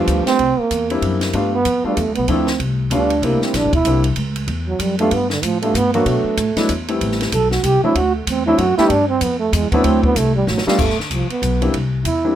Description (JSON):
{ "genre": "jazz, small-group swing and bop", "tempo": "190 BPM", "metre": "3/4", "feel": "swing 61% on 8ths", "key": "G major", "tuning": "A4 = 439 Hz", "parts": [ { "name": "breathy trombone", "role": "second line", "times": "0.0-12.4 s", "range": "D3 to A4", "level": "-18 LUFS", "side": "right 4 dB", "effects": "none" }, { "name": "warm baby grand piano", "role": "accompaniment", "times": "0.0-12.4 s", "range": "F3 to G4", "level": "-20 LUFS", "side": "left 3 dB", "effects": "none" }, { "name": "upright bass", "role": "bass", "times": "0.0-12.4 s", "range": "E1 to B2", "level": "-21 LUFS", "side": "equal", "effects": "none" }, { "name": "compact cocktail drum kit", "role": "drums", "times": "0.1-12.1 s", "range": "crash cymbal, hi-hat, kick drum, ride cymbal, snare drum", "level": "-24 LUFS", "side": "equal", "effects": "none" } ], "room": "light reverb", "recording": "none", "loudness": "-15 LUFS", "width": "side -11 dB against mid", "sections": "0.0-10.8 A section; 10.8-12.4 A section", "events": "trombone solo 0.0-12.4; drum fill 10.5-10.8", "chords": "0.4 C7; 1.3 G7; 2.3 Dm7; 2.9 G7; 3.2 C7; 4.2 C#dim; 5.1 G; 6.1 Bm7; 6.7 E5; 7.0 Am7; 8.0 D; 8.9 F69; 9.5 E7; 9.8 D7; 10.8 G; 11.7 C7" }